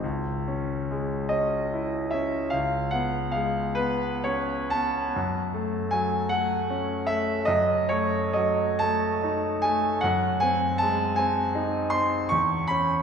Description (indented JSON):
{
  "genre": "classical, romantic nocturne for solo piano",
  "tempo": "41-55 BPM (dotted quarters)",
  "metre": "12/8",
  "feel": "rubato",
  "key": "C# minor",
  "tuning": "A4 = 439 Hz",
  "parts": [
    { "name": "bright concert grand piano", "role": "solo", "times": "0.0-13.0 s", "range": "C#2 to C#6", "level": "-23 LUFS", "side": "equal", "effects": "none" }
  ],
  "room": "wet church reverb, RT60 2.8 s",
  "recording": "recorded in a church or concert hall",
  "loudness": "-23 LUFS",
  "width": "side -6 dB against mid",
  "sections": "0.0-13.0 A section",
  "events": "none",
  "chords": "0.0 C#m; 2.5 C#5; 5.1 F#m; 7.5 D#dim/F#; 10.0 G#7/F#; 12.3 C#m/E"
}